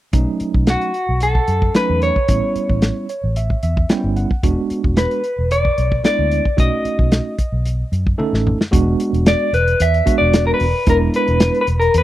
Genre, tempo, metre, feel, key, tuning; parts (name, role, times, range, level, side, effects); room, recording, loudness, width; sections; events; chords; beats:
straight-eighth soul blues; 112 BPM; 4/4; straight; E mixolydian from 8.7 s; A4 = 440 Hz
tine electric piano; accompaniment; 0.1-11.6 s; F#3 to G5; -21 LUFS; right 3 dB; fast stereo tremolo
vintage muted fingered electric bass; bass; 0.1-12.0 s; E1 to F#2; -19 LUFS; equal
warm soul drum kit; drums; 0.1-12.0 s; hi-hat, kick drum, snare drum, toms; -18 LUFS; equal
electric guitar through a small old amp; melody; 0.7-12.0 s; F#4 to E5; -18 LUFS; left 1 dB; spring reverb
little or no reverb; dry, close 1970s-style studio recording; -14 LUFS; side -14 dB against mid
0.1-8.7 A section; 8.7-12.0 B section
tine electric piano fill 2.8-4.4; drum fill 8.2-8.7
0.1 B7; 2.3 A7; 4.4 E7; 6.6 B7; 8.7 E7
| 0.14 0.68 1.21 1.75 | 2.29 2.82 3.36 3.90 | 4.43 4.97 5.51 6.04 | 6.58 7.12 7.65 8.19 | 8.73 9.26 9.80 10.33 | 10.87 11.41 11.94